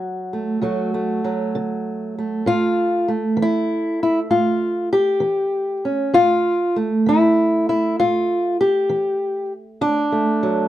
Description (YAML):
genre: acoustic country blues, solo or duo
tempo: 65 BPM (dotted quarters)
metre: 12/8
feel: straight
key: unclear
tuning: A4 = 440 Hz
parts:
  - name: fingerpicked old ladder-braced acoustic guitar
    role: solo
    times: 0.0-10.7 s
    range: D2 to G4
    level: -17 LUFS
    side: equal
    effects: none
room: light reverb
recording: none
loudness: -17 LUFS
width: side -13 dB against mid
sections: 0.0-10.7 A section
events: none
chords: 0.0 D; 2.5 A5; 9.8 D